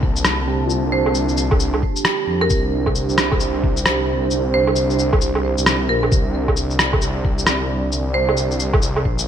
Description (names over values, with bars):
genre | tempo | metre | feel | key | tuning
future garage | 133 BPM | 4/4 | swing 62% on 16ths | unclear | A4 = 440 Hz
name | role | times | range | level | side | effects
muted felt-like synth keys | accompaniment | 0.0-9.3 s | Bb3 to G4 | -29 LUFS | right 2 dB | chorus, sidechain pumping, ping-pong delay
dark analog pad | sustained chords | 0.0-9.3 s | D4 to A5 | -24 LUFS | right 3 dB | chorus, sidechain pumping
swelling detuned saw bass | bass | 0.0-9.3 s | Bb1 to F2 | -22 LUFS | equal | none
electronic kick drum | drums | 0.0-9.2 s | none | -20 LUFS | left 1 dB | none
electronic shaker, rim click and woodblock | drums | 0.2-9.3 s | none | -20 LUFS | equal | gated reverb
marimba with medium hard mallets | melody | 0.9-8.4 s | Bb4 to C5 | -25 LUFS | right 2 dB | ping-pong delay
room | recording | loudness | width
light reverb, digital ambience | bright 1980s-style digital production | -16 LUFS | side -9 dB against mid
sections
0.0-9.3 A section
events
filter sweep on synth keys 0.0-9.3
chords
0.0 Csus2